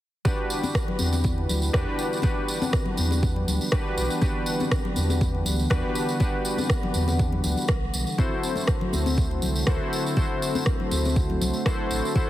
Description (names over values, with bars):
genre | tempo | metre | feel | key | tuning
afro house | 121 BPM | 4/4 | swing 54% on 16ths | E minor | A4 = 440 Hz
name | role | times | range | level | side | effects
warm analog keys | stabs | 0.2-12.3 s | D4 to C5 | -29 LUFS | left 1 dB | chorus, sidechain pumping, tape echo
congas | percussion | 0.2-12.3 s | none | -31 LUFS | left 4 dB | none
tambourine | percussion | 0.2-12.3 s | none | -34 LUFS | right 2 dB | none
warm analog pad | sustained chords | 0.3-12.3 s | D3 to F#5 | -31 LUFS | right 1 dB | chorus, sidechain pumping
electronic kick drum | drums | 0.3-12.3 s | none | -25 LUFS | equal | overdrive
electronic rim click | drums | 0.8-11.8 s | none | -32 LUFS | equal | overdrive
warm sub bass | bass | 1.0-12.0 s | A1 to E2 | -26 LUFS | equal | sidechain pumping
room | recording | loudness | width
light reverb, digital ambience | heavily compressed radio sound, multiband compression | -22 LUFS | side -14 dB against mid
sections
0.3-12.3 A section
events
none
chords
0.3 Em7; 8.2 D7